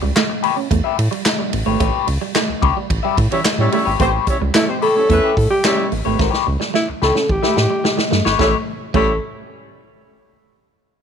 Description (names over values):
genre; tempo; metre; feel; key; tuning
funk; 109 BPM; 4/4; straight; A mixolydian; A4 = 438 Hz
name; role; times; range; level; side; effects
clean electric guitar; accompaniment; 0.0-9.1 s; G4 to E5; -22 LUFS; left 14 dB; wah
electric guitar at the edge of break-up; riff; 0.0-9.1 s; E3 to C#4; -25 LUFS; right 15 dB; tremolo
round analog bass; bass; 0.0-9.2 s; G#1 to A2; -19 LUFS; equal; none
swinging big-band drum kit; drums; 0.2-9.1 s; crash cymbal, handclaps, hi-hat, kick drum, ride cymbal, snare drum; -20 LUFS; equal; none
dark horn section; second line; 3.3-9.1 s; E3 to E5; -22 LUFS; equal; none
mellow alto saxophone; melody; 4.6-9.2 s; E4 to A4; -18 LUFS; equal; none
room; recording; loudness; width
small room ambience; 1960s-style stereo with parts hard left and right; -15 LUFS; side -7 dB against mid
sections
0.0-4.0 A section; 4.0-8.4 B section; 8.4-10.6 C section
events
band accent 1.8-4.0; drum fill 6.2-8.4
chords
0.0 A9